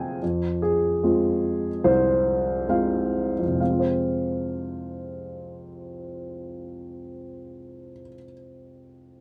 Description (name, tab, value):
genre	classical, lyrical solo piano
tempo	62-74 BPM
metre	4/4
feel	rubato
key	F minor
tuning	A4 = 440 Hz
part	warm upright piano	solo	0.0-9.2 s	C2 to Ab5	-26 LUFS	equal	none
room	light reverb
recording	dark, warm production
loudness	-24 LUFS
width	mono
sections	0.2-3.6 A section; 3.6-7.4 B section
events	upright piano fill 0.0; slowing down 0.0-3.6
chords	0.2 Fm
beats	| 0.22 1.03 1.84 2.69 | 3.61 4.54 5.47 6.42